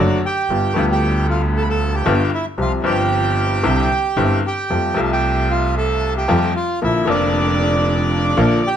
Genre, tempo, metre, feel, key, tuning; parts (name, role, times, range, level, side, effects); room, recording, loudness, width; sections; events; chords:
tango; 115 BPM; 4/4; rubato; F major; A4 = 438 Hz
bandoneon; melody; 0.0-8.8 s; D4 to B5; -20 LUFS; right 2 dB
bright upright piano; accompaniment; 0.0-8.6 s; F1 to G4; -20 LUFS; left 2 dB
clear double bass; bass; 0.0-8.6 s; F1 to F2; -20 LUFS; right 1 dB
moderate studio reverb, RT60 0.9 s; -15 LUFS; side -9 dB against mid
0.0-8.8 A section
0.5 G7; 2.6 Csus4; 3.6 Cadd9; 4.7 Fadd9; 6.8 Bb